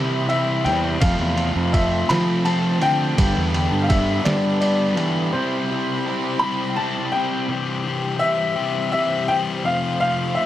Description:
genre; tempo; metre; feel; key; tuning
indie rock; 56 BPM (dotted quarters); 6/8; straight; C major; A4 = 439 Hz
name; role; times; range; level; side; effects
bright upright piano; melody; 0.0-10.5 s; C5 to B5; -23 LUFS; left 2 dB; plate reverb
string machine, violins; sustained chords; 0.0-10.5 s; E4 to C6; -35 LUFS; right 1 dB; ensemble chorus, plate reverb
raw garage guitar; riff; 0.0-7.5 s; F2 to E4; -28 LUFS; right 6 dB; overdrive, wide subtle chorus, digital delay
sludgy distorted guitar; riff; 0.0-10.5 s; F2 to G4; -24 LUFS; left 4 dB; overdrive
growling fingered electric bass; bass; 0.0-5.3 s; E2 to G3; -22 LUFS; right 1 dB; overdrive
lo-fi sampler-style drum kit; drums; 0.3-5.1 s; kick drum, ride cymbal, snare drum; -25 LUFS; right 1 dB; overdrive
room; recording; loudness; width
light reverb; none; -18 LUFS; side -12 dB against mid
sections
0.0-7.5 A section; 7.5-10.5 A section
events
break 5.3-7.5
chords
0.0 C; 1.0 Fmaj7; 3.2 Gadd9; 5.3 Cadd9; 7.5 C; 9.7 F

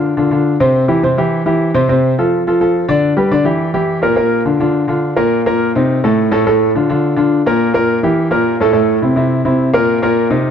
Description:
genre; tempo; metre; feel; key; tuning
latin; 210 BPM; 4/4; straight; unclear; A4 = 440 Hz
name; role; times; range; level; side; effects
clear concert grand piano; solo; 0.0-10.5 s; A2 to D5; -11 LUFS; equal; none
room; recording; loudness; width
light reverb; dark, warm production; -11 LUFS; side -8 dB against mid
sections
0.0-4.2 A section; 4.2-10.5 B section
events
none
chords
0.0 Bbadd9 (rootless); 0.7 C; 1.9 F6; 3.0 Em7; 3.6 Edim; 4.2 Bb; 5.3 Cm7; 5.9 Adim; 6.5 Bbmaj7; 7.6 Gm; 8.2 Gm69; 8.7 Am; 9.9 Cm7

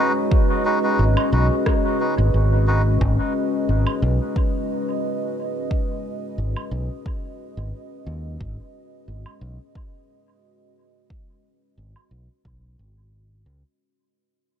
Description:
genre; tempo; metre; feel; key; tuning
ambient dub; 89 BPM; 4/4; swing 54% on 16ths; G# minor; A4 = 439 Hz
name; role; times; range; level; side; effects
deep dark ambient pad; sustained chords; 0.0-13.8 s; G#3 to D#5; -24 LUFS; equal; chorus, built-in reverb
melodica; stabs; 0.0-2.8 s; G#3 to B4; -26 LUFS; left 1 dB; dub echo
electronic kick drum; drums; 0.3-12.6 s; none; -22 LUFS; equal; overdrive
fingered electric bass; bass; 1.0-13.6 s; G#1 to D#2; -20 LUFS; equal; none
electronic woodblock and rim click; drums; 1.2-12.1 s; none; -34 LUFS; right 2 dB; low-pass filter on perc, low-pass filter on snare, low-pass filter on room, dub echo
room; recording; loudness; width
light reverb; dark, warm production; -19 LUFS; side -9 dB against mid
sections
0.0-13.8 A section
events
fade-out 0.0-13.8; filter sweep on drum 0.0-13.8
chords
0.0 G#m7

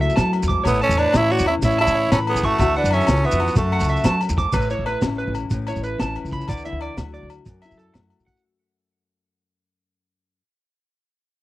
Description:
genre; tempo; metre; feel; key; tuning
highlife guitar band; 123 BPM (dotted quarters); 12/8; straight; A major; A4 = 440 Hz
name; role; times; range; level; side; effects
nylon-string guitar; accompaniment; 0.0-10.4 s; F#2 to A4; -28 LUFS; left 4 dB; none
electric guitar at the edge of break-up; arpeggios; 0.0-8.4 s; A4 to D6; -26 LUFS; right 3 dB; tape echo
upright bass; bass; 0.0-8.3 s; A1 to F#3; -24 LUFS; equal; none
crunchy breakbeat drum kit; drums; 0.0-8.4 s; crash cymbal, hi-hat, kick drum, snare drum; -24 LUFS; equal; none
shekere; percussion; 0.1-8.4 s; none; -25 LUFS; right 2 dB; none
agogo bells; percussion; 0.2-8.3 s; none; -30 LUFS; left 8 dB; none
raspy tenor saxophone; melody; 0.7-4.2 s; A3 to F#4; -20 LUFS; right 1 dB; none
growling trumpet; second line; 0.7-4.2 s; E4 to D5; -30 LUFS; right 5 dB; none
room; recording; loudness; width
little or no reverb; dry, close 1970s-style studio recording; -17 LUFS; side -16 dB against mid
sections
0.0-4.5 A section; 4.5-8.4 B section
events
fade-out 4.5-8.4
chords
0.0 F#m7; 0.7 Aadd9; 2.6 Dadd9; 3.6 F#m7; 4.5 Aadd9; 6.5 Dadd9; 7.5 F#m7

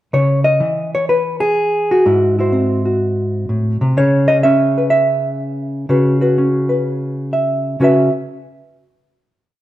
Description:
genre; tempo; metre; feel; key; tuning
solo jazz; 125 BPM; 4/4; swing 67% on 8ths; C# minor; A4 = 440 Hz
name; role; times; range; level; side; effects
hollow-body jazz guitar; solo; 0.1-8.1 s; G#2 to E5; -13 LUFS; equal; none
room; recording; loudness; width
wet stone room reverb, RT60 1.2 s; band playing live in one room; -13 LUFS; side -14 dB against mid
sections
0.1-7.8 A section; 7.8-9.6 final chord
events
none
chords
0.1 C#madd9; 2.0 G#7b13; 4.0 C#m7; 7.8 C#7sus4

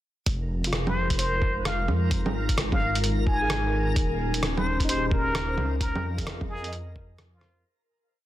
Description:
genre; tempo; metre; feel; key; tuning
future garage; 130 BPM; 4/4; swing 64% on 16ths; F minor; A4 = 439 Hz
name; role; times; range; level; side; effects
dark analog pad; sustained chords; 0.3-7.6 s; Ab3 to F5; -34 LUFS; left 1 dB; chorus, sidechain pumping
dark detuned saw bass; bass; 0.3-7.6 s; F1 to F2; -29 LUFS; equal; sidechain pumping
electronic kick drum; drums; 0.3-7.1 s; none; -27 LUFS; equal; none
lo-fi sampler-style drum kit; drums; 0.3-7.5 s; bongos, hi-hat, rim click; -30 LUFS; right 1 dB; soft clipping on snare
backwards swelling texture; texture; 0.4-7.7 s; Bb4; -38 LUFS; left 1 dB; built-in reverb
felt-muted upright piano; accompaniment; 0.7-7.8 s; Eb4 to Eb5; -38 LUFS; right 1 dB; vintage 12-bit sampler grit, sidechain pumping, low-pass filter, tape echo
trumpet with plunger mute; melody; 0.9-7.7 s; F4 to Ab5; -30 LUFS; equal; tape echo
room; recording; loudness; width
light reverb; dense, heavily limited modern master; -23 LUFS; side -14 dB against mid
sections
0.3-7.6 groove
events
filter sweep on felt piano 0.3-7.6; fade-out 5.2-7.6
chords
0.3 Fm7; 4.0 Eb7sus4; 5.8 Db69

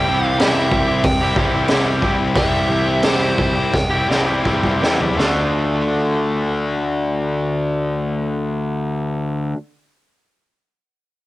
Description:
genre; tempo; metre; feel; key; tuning
quiet-loud alternative rock; 80-94 BPM; 4/4; straight; D minor; A4 = 440 Hz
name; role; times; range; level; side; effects
biting lead guitar; melody; 0.0-4.1 s; C5 to G5; -23 LUFS; right 1 dB; overdrive
electric guitar at the edge of break-up; arpeggios; 0.0-9.6 s; C3 to G4; -25 LUFS; right 4 dB; none
distorted electric guitar; riff; 0.0-9.6 s; C3 to G4; -20 LUFS; left 3 dB; overdrive
fuzz picked electric bass; bass; 0.0-9.5 s; C2 to E2; -23 LUFS; equal; overdrive
raw garage drum kit; drums; 0.4-5.4 s; hi-hat, kick drum, snare drum, toms; -20 LUFS; equal; cassette tape
room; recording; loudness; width
light reverb; home recording on cassette; -16 LUFS; side -17 dB against mid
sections
0.0-5.2 A section; 5.2-8.2 B section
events
slowing down 0.0-5.2; lead electric guitar solo 0.0-5.2; drum fill 3.7-5.2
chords
0.0 C; 5.2 Dm

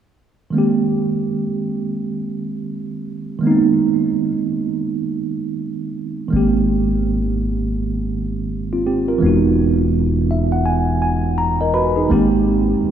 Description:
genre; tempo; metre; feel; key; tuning
R&B, neo-soul; 83 BPM; 4/4; swing 62% on 16ths; Ab major; A4 = 441 Hz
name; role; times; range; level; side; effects
tine electric piano; accompaniment; 0.5-12.9 s; Eb3 to B5; -17 LUFS; right 2 dB; medium stereo tremolo
deep dub fingered electric bass; bass; 6.3-12.9 s; E1 to Ab1; -21 LUFS; equal; none
room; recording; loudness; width
wet lush hall reverb, RT60 3.1 s; dreamy mix soaked in reverb, small room reverb; -16 LUFS; side -9 dB against mid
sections
0.5-12.1 A section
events
tine electric piano fill 9.9-12.1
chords
0.5 Abmaj9; 9.2 Emaj9; 12.1 Abmaj9

